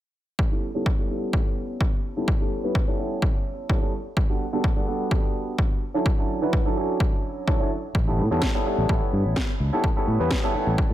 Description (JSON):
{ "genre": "filtered disco house", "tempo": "127 BPM", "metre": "4/4", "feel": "straight", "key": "A mixolydian", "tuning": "A4 = 440 Hz", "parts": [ { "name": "electronic kick drum", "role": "drums", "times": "0.4-10.9 s", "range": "none", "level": "-23 LUFS", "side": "equal", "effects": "none" }, { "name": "bright baby grand piano", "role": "accompaniment", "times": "0.5-10.9 s", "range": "F#3 to B4", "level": "-26 LUFS", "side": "right 1 dB", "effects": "phaser, sidechain pumping, low-pass filter" }, { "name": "fingered electric bass", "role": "bass", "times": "7.9-10.9 s", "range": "A1 to A2", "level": "-23 LUFS", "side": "equal", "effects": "sidechain pumping, low-pass filter" }, { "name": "electronic snare drum", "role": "drums", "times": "8.4-10.4 s", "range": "none", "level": "-30 LUFS", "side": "equal", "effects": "overdrive" } ], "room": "little or no reverb", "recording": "none", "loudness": "-22 LUFS", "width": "side -13 dB against mid", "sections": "0.4-10.9 A section", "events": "filter sweep 0.4-10.9", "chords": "0.4 A9; 4.2 Gmaj9; 5.8 Dmaj7; 7.9 A9", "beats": "| 0.39 0.86 1.33 1.81 | 2.28 2.75 3.23 3.70 | 4.17 4.64 5.11 5.59 | 6.06 6.53 7.00 7.48 | 7.95 8.42 8.89 9.37 | 9.84 10.31 10.78" }